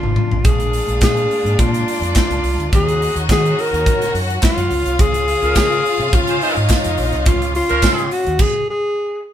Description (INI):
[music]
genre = disco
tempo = 106 BPM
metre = 4/4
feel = straight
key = unclear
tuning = A4 = 441 Hz
[part]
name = breathy alto saxophone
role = melody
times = 0.0-9.2 s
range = Eb4 to Bb4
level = -19 LUFS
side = equal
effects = none
[part]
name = clear studio violin section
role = second line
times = 0.0-8.4 s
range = Db4 to Gb5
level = -27 LUFS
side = left 1 dB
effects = none
[part]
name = dark studio string section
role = sustained chords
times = 0.0-8.4 s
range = Db3 to Gb4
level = -25 LUFS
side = left 3 dB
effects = none
[part]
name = overdriven fingered electric bass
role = bass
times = 0.0-8.4 s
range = Ab1 to Eb3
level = -21 LUFS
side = equal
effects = none
[part]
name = modern studio drum kit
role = drums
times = 0.0-8.5 s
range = crash cymbal, handclaps, hi-hat, kick drum, snare drum, toms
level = -18 LUFS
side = equal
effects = none
[part]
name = clear horn section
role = stabs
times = 5.4-8.1 s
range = F3 to C5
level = -20 LUFS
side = right 2 dB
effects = none
[part]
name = tambourine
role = percussion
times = 5.6-8.0 s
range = none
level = -31 LUFS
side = right 6 dB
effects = none
[sound]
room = moderate stone room reverb, RT60 0.9 s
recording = band playing live in one room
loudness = -14 LUFS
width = side -10 dB against mid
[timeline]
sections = 0.4-9.3 A section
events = drum fill 0.0-0.4; stop 8.4-9.3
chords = 0.4 Bb7; 2.7 Ebm7; 4.7 Db